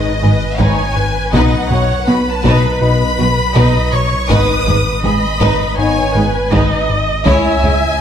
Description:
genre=cinematic, hybrid orchestral and electronic film score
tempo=81 BPM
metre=4/4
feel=straight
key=unclear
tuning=A4 = 440 Hz
part: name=warm symphonic violin section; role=melody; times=0.0-8.0 s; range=D#5 to D#6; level=-20 LUFS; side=left 3 dB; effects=none
part: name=warm symphonic viola section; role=accompaniment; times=0.0-8.0 s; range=B4 to E5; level=-20 LUFS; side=right 2 dB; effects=none
part: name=warm French horn section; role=sustained chords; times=0.0-7.5 s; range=G#3 to E4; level=-22 LUFS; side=left 3 dB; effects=none
part: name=rubbery square bass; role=riff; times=0.0-7.9 s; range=C#2 to B3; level=-18 LUFS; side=left 2 dB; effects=none
part: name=saturated sub bass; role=bass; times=0.0-8.0 s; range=G#1 to C#2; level=-22 LUFS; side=equal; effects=none
part: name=warm symphonic violin section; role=second line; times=0.2-7.7 s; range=B3 to C#5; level=-20 LUFS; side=equal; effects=none
part: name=warm symphonic cello section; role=bass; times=0.2-7.7 s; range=G#2 to C#3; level=-21 LUFS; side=right 2 dB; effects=none
part: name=warm symphonic double bass section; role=bass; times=0.2-7.7 s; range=G#1 to C#2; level=-21 LUFS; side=right 3 dB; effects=none
part: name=taiko ensemble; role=drums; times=0.6-8.0 s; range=none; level=-22 LUFS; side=equal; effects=none
room=wet scoring stage reverb, RT60 1.8 s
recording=none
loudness=-11 LUFS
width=side -9 dB against mid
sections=0.0-8.0 A section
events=none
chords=0.0 G#m; 1.3 B; 4.3 G#m; 7.3 C#m

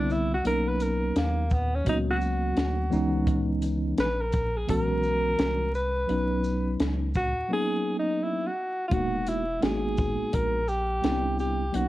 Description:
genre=hip hop, jazz-hop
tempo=85 BPM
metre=4/4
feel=swing 61% on 16ths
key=B major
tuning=A4 = 440 Hz
part: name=breathy alto saxophone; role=melody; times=0.0-11.9 s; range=A#3 to B4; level=-28 LUFS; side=equal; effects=none
part: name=mellow tine electric piano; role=accompaniment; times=0.0-11.9 s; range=D3 to F#4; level=-29 LUFS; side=equal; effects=medium stereo tremolo
part: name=soft dub sub bass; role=bass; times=0.0-11.9 s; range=E1 to D#2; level=-30 LUFS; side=equal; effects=none
part: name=compact cocktail drum kit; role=drums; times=0.1-11.9 s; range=hi-hat, kick drum, shaker, snare drum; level=-30 LUFS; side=equal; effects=none
room=small room ambience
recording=worn, warbling old tape, cassette tape, vinyl crackle, warbly pitch drift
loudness=-24 LUFS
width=side -16 dB against mid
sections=0.0-8.9 A section; 8.9-11.9 B section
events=alto saxophone solo 0.0-8.9; silent gap 7.5-8.9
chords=0.4 Bmaj9; 2.9 C#m9; 6.1 Bmaj9; 8.9 Emaj9#11; 11.0 Cmaj9

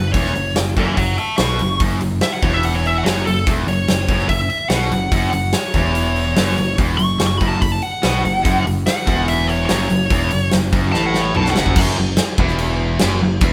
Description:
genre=hard rock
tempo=145 BPM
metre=4/4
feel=straight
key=F# minor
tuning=A4 = 440 Hz
part: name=high-gain lead guitar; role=melody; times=0.0-11.8 s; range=A4 to C#6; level=-24 LUFS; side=equal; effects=distortion
part: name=distorted electric guitar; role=riff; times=0.0-13.5 s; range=E2 to B2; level=-26 LUFS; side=equal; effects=overdrive
part: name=high-gain distorted guitar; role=riff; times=0.0-11.8 s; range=E2 to B2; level=-27 LUFS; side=equal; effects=distortion
part: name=picked electric bass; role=bass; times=0.0-13.5 s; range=E1 to B1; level=-23 LUFS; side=equal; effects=none
part: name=big rock drum kit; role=drums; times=0.1-13.5 s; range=crash cymbal, hi-hat, kick drum, snare drum, toms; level=-22 LUFS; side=equal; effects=none
part: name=high-gain distorted guitar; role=riff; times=11.8-13.5 s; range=E2 to F#2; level=-26 LUFS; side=equal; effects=distortion
room=light reverb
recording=band playing live in one room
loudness=-17 LUFS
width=mono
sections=0.0-11.8 A section; 11.8-13.5 B section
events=lead electric guitar solo 0.0-11.8; drum fill 10.9-11.8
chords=0.0 F#5; 11.8 N.C.

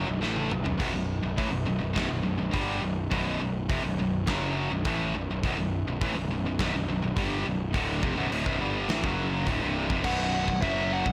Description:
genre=heavy metal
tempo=104 BPM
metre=4/4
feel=straight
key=B minor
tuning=A4 = 440 Hz
part: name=high-gain distorted guitar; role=riff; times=0.0-11.1 s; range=B1 to A3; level=-34 LUFS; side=equal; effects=distortion
part: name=high-gain distorted guitar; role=riff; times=0.0-11.1 s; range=B1 to A3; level=-34 LUFS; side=equal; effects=distortion
part: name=fuzz picked electric bass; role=bass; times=0.0-11.1 s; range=B0 to A1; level=-34 LUFS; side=equal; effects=overdrive
part: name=big rock drum kit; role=drums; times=0.2-11.1 s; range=china cymbal, crash cymbal, hi-hat, kick drum, snare drum, splash cymbal, toms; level=-35 LUFS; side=equal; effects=soft clipping on kick
part: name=high-gain lead guitar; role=melody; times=10.0-11.1 s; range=E5 to F#5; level=-32 LUFS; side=equal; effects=distortion
room=light reverb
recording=blown-out, overdriven recording, overdrive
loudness=-28 LUFS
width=mono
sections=0.0-10.1 A section; 10.1-11.1 B section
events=drum fill 0.2-0.8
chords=0.0 Bm; 10.1 B5

